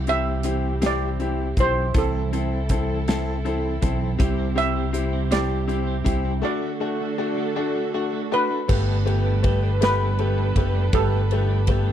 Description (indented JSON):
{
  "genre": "six-eight pop ballad",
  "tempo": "53 BPM (dotted quarters)",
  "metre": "6/8",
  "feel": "straight",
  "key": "G major",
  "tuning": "A4 = 440 Hz",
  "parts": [
    { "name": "warm studio string section", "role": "sustained chords", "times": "0.0-11.9 s", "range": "C3 to B4", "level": "-31 LUFS", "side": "right 3 dB", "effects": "none" },
    { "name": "fretless electric bass", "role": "bass", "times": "0.0-11.9 s", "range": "F#1 to C2", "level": "-23 LUFS", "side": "equal", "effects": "ensemble chorus" },
    { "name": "steel pan", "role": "melody", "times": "0.1-11.9 s", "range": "A4 to E5", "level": "-25 LUFS", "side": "right 2 dB", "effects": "none" },
    { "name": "bright upright piano", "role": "accompaniment", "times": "0.1-11.9 s", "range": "A3 to A4", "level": "-27 LUFS", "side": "left 5 dB", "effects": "none" },
    { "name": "modern studio drum kit", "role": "drums", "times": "0.1-11.9 s", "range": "crash cymbal, hi-hat, kick drum, ride cymbal, snare drum", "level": "-25 LUFS", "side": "equal", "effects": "none" },
    { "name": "twelve-string electric guitar", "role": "arpeggios", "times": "4.2-11.9 s", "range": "G3 to A4", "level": "-32 LUFS", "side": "right 15 dB", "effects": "analog chorus" }
  ],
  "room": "small room ambience",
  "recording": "none",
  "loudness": "-20 LUFS",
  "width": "side -10 dB against mid",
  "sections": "0.0-8.7 A section; 8.7-11.9 B section",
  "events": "none",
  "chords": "0.0 C; 1.9 Am/C; 4.2 C; 6.4 D; 8.7 Gadd9"
}